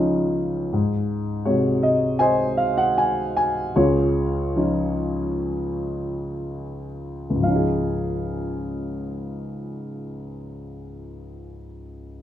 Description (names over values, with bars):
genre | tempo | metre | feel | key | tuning
classical, lyrical solo piano | 55-82 BPM | 4/4 | rubato | Db major | A4 = 440 Hz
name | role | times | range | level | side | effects
dark grand piano | solo | 0.0-12.2 s | Db2 to Ab5 | -22 LUFS | equal | none
room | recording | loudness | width
moderate recital hall reverb, RT60 1.5 s | minimal, uncompressed stereo recording | -20 LUFS | side -11 dB against mid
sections
0.7-7.4 A section; 7.4-11.7 B section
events
slowing down 0.7-7.4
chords
0.0 Dbadd9; 0.7 Ab7; 3.7 Dbadd9